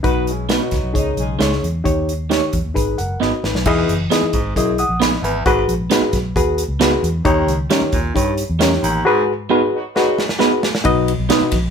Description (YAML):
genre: uptempo 1960s-style soul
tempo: 133 BPM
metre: 4/4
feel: straight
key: unclear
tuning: A4 = 440 Hz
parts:
  - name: mellow horn section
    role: second line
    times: 0.0-1.4, 9.7-10.3 s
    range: D#3 to B4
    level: -26 LUFS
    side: equal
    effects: none
  - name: reed electric piano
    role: accompaniment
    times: 0.0-11.6 s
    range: G#2 to D#6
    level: -18 LUFS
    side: left 2 dB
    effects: none
  - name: vintage muted fingered electric bass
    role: bass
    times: 0.0-11.7 s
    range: E1 to G2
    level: -22 LUFS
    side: equal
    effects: none
  - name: natural country drum kit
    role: drums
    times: 0.0-11.6 s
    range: crash cymbal, hi-hat, kick drum, ride cymbal, snare drum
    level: -21 LUFS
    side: right 1 dB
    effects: none
  - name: electric guitar through a small old amp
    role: stabs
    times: 0.5-11.4 s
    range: G3 to C#5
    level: -19 LUFS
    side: right 6 dB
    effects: none
  - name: raspy baritone saxophone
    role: riff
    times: 3.7-9.2 s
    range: D#2 to A#2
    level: -23 LUFS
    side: right 2 dB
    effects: none
room: moderate studio reverb, RT60 0.7 s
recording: band playing live in one room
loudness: -15 LUFS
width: side -7 dB against mid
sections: 0.0-3.7 A section; 3.7-10.9 B section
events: drum fill 3.2-3.7, 10.0-10.9; band accent 9.1-10.9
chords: 0.0 B; 0.9 C#sus2; 1.9 D#7; 2.8 G#m; 3.7 Emaj7; 5.5 G#m7; 7.3 D#7; 9.1 G#m7; 10.9 B